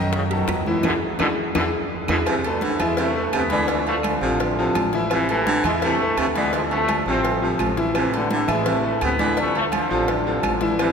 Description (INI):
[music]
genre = latin, salsa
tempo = 169 BPM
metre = 4/4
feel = straight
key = A minor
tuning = A4 = 445 Hz
[part]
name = bright trombone section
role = melody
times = 0.0-10.9 s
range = A2 to C4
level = -24 LUFS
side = equal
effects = none
[part]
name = bright concert grand piano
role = accompaniment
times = 0.0-10.9 s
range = D3 to F5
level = -24 LUFS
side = left 1 dB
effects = none
[part]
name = upright bass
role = bass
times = 0.0-10.9 s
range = A1 to A2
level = -30 LUFS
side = right 1 dB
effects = none
[part]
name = bongos and cowbell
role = percussion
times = 0.1-10.9 s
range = none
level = -31 LUFS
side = left 5 dB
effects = none
[part]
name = congas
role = percussion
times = 0.1-10.9 s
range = none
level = -32 LUFS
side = left 1 dB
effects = none
[part]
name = timbales and agogo bells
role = percussion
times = 0.1-10.9 s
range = none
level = -29 LUFS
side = right 3 dB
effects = none
[part]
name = claves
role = percussion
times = 0.5-10.9 s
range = none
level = -38 LUFS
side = right 3 dB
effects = none
[part]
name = breathy baritone saxophone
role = second line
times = 2.3-10.9 s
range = C3 to E3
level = -26 LUFS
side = right 1 dB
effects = none
[sound]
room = wet cathedral reverb, RT60 5.2 s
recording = recorded in a church or concert hall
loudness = -19 LUFS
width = side -6 dB against mid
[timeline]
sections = 0.0-2.3 A section; 2.3-10.9 B section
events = drum fill 0.8-2.3; band accent 0.8-2.3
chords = 0.0 B7; 0.8 E7; 2.3 Amadd9; 3.7 Dm7; 5.1 Amadd9; 6.5 Dm7; 8.0 Amadd9; 9.4 Dm7